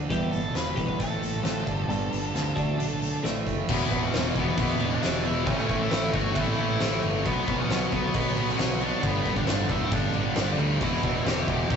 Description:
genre	quiet-loud alternative rock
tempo	135 BPM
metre	4/4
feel	straight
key	E dorian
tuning	A4 = 440 Hz
part	crunchy overdriven guitar	riff	0.0-11.8 s	E2 to D4	-31 LUFS	right 4 dB	none
part	growling fingered electric bass	bass	0.0-11.8 s	E1 to D2	-32 LUFS	equal	overdrive
part	octave-fuzz lead guitar	melody	0.1-11.8 s	B3 to G5	-32 LUFS	left 2 dB	distortion
part	twelve-string electric guitar	arpeggios	0.1-3.5 s	D3 to A4	-31 LUFS	equal	phaser
part	oversized low-tuned drum kit	drums	0.1-11.8 s	crash cymbal, hi-hat, kick drum, snare drum	-28 LUFS	right 1 dB	none
part	overdriven electric guitar	riff	3.7-11.8 s	E2 to B3	-30 LUFS	left 5 dB	none
room	moderate booth ambience, RT60 0.2 s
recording	rough rehearsal-room recording, nothing above 7.9 kHz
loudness	-24 LUFS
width	side -7 dB against mid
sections	0.0-3.7 A section; 3.7-11.8 B section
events	none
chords	0.1 Em; 1.0 A; 1.7 Gadd9; 2.6 D; 3.2 Asus4; 3.7 E5; 5.5 A; 7.3 Bm; 9.0 G; 10.8 Em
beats	| 0.10 0.55 1.00 1.45 | 1.90 2.34 2.79 3.24 | 3.69 4.13 4.58 5.02 | 5.47 5.92 6.36 6.81 | 7.25 7.70 8.14 8.59 | 9.03 9.48 9.92 10.37 | 10.81 11.26 11.71

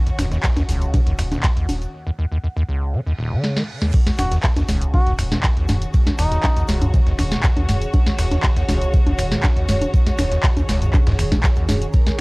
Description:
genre	acid house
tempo	120 BPM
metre	4/4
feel	straight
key	Eb minor pentatonic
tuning	A4 = 440 Hz
part	warm studio string section	sustained chords	0.0-12.2 s	Eb3 to Bb4	-31 LUFS	left 1 dB	sidechain pumping, cassette tape
part	granular cloud pad	texture	0.0-12.2 s	Ab4 to Gb5	-31 LUFS	right 2 dB	built-in reverb, sidechain pumping, cassette tape
part	acid bass, square	riff	0.1-12.1 s	Eb1 to Eb3	-22 LUFS	equal	overdrive, sidechain pumping, cassette tape
part	booming analog drum machine	drums	0.1-12.2 s	congas, crash cymbal, finger snaps, handclaps, hi-hat, snare drum, toms	-23 LUFS	equal	cassette tape
part	egg shaker	percussion	0.1-12.2 s	none	-45 LUFS	left 7 dB	none
part	round analog bass	bass	0.2-11.8 s	Eb1	-24 LUFS	equal	sidechain pumping
part	dusty soul sampler-style drum kit	drums	0.2-12.2 s	ride cymbal, snare drum	-38 LUFS	equal	none
part	electronic kick drum	drums	0.4-12.0 s	none	-17 LUFS	equal	cassette tape
part	reverse cymbal	sound effects	3.1-3.9 s	none	-36 LUFS	right 3 dB	none
part	trumpet with cup mute	melody	4.2-6.7, 12.2 s	Eb4 to Gb4	-26 LUFS	equal	cassette tape, tape echo
room	little or no reverb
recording	home recording on cassette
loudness	-16 LUFS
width	side -27 dB against mid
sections	0.0-3.9 A section; 3.9-12.2 B section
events	break 1.9-3.9; reverse cymbal 3.1-3.9; drum fill 3.4-3.9; drop 3.9-12.2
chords	0.0 Ebm7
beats	0.44 0.94 1.44 | 1.94 2.44 2.94 3.44 | 3.94 4.44 4.94 5.44 | 5.94 6.44 6.94 7.44 | 7.94 8.44 8.94 9.44 | 9.94 10.44 10.94 11.44 | 11.94

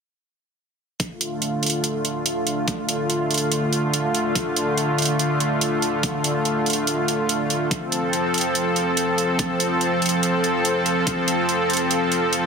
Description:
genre	heavy wobble dubstep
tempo	143 BPM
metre	4/4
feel	half-time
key	D minor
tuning	A4 = 440 Hz
part	supersaw pad	sustained chords	1.0-12.5 s	D3 to A4	-20 LUFS	equal	sidechain pumping, low-pass filter
part	electronic hi-hat	drums	1.0-12.4 s	none	-24 LUFS	right 2 dB	overdrive
part	electronic kick drum	drums	1.0-11.2 s	none	-26 LUFS	equal	overdrive, high-pass filter on kick, high-pass filter on room
room	moderate lush hall reverb, RT60 2.1 s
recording	dense, heavily limited modern master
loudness	-19 LUFS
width	side -5 dB against mid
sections	1.0-12.5 A section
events	filter sweep on supersaw synth 1.0-12.5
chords	1.0 Dm; 7.7 F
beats	| 1.00 1.42 1.84 2.26 | 2.68 3.10 3.52 3.94 | 4.36 4.77 5.19 5.61 | 6.03 6.45 6.87 7.29 | 7.71 8.13 8.55 8.97 | 9.39 9.81 10.23 10.65 | 11.07 11.49 11.91 12.33

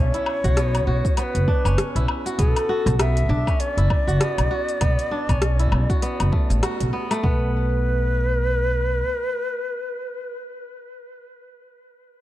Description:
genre	organic downtempo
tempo	99 BPM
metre	4/4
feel	swing 58% on 16ths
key	B minor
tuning	A4 = 440 Hz
part	breathy Native American-style cedar flute	melody	0.0-10.4 s	A4 to E5	-26 LUFS	equal	ping-pong delay
part	kora	arpeggios	0.0-9.1 s	A3 to F#4	-28 LUFS	right 1 dB	ping-pong delay
part	upright bass	bass	0.0-9.0 s	F#1 to B1	-21 LUFS	equal	none
part	deep house drum kit	drums	0.1-7.2 s	hi-hat, rim click, shaker, woodblock	-28 LUFS	left 2 dB	overdrive
part	electronic kick drum	drums	0.4-7.4 s	none	-22 LUFS	equal	overdrive
room	light reverb, small room ambience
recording	dark, warm production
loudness	-19 LUFS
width	side -14 dB against mid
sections	0.0-7.2 A section; 7.2-9.7 B section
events	band accent 6.6-6.9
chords	0.0 Bm7; 7.2 N.C.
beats	0.57 1.17 1.78 | 2.39 2.99 3.60 4.21 | 4.81 5.42 6.02 6.63 | 7.24 7.84 8.45 9.05

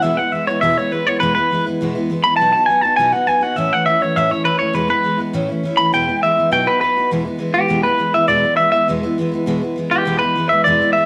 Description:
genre	rock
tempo	204 BPM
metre	4/4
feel	straight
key	E major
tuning	A4 = 440 Hz
part	electric guitar through a small old amp	melody	0.0-11.1 s	G4 to B5	-17 LUFS	equal	tape echo
part	picked steel-string acoustic guitar	accompaniment	0.0-11.1 s	E2 to F#4	-23 LUFS	equal	none
room	light reverb, small room ambience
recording	none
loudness	-17 LUFS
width	mono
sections	0.0-7.1 A section; 7.1-11.1 A section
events	none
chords	0.0 E; 2.4 B; 3.6 A; 4.8 E; 5.3 A; 5.9 E; 6.5 B; 7.1 E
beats	| 0.04 0.33 0.63 0.92 | 1.22 1.51 1.81 2.10 | 2.40 2.69 2.98 3.28 | 3.57 3.87 4.16 4.46 | 4.75 5.05 5.34 5.64 | 5.93 6.23 6.52 6.82 | 7.11 7.41 7.70 7.99 | 8.29 8.58 8.88 9.17 | 9.47 9.76 10.06 10.35 | 10.65 10.94

